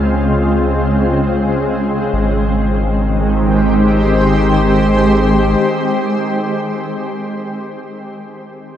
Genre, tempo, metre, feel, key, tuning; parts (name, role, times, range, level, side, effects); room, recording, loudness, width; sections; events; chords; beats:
ambient; free time; Ab major; A4 = 440 Hz
shimmering ambient pad; sustained chords; 0.0-7.5 s; Db3 to C5; -14 LUFS; equal; chorus, built-in reverb
round analog bass; bass; 0.0-5.6 s; Ab1 to Db2; -18 LUFS; equal
wet huge ambient reverb, RT60 7.1 s; dark, warm production; -12 LUFS; side -10 dB against mid
0.0-2.1 A section; 2.1-6.8 B section
0.0 Dbmaj7; 2.1 Abmaj7
free time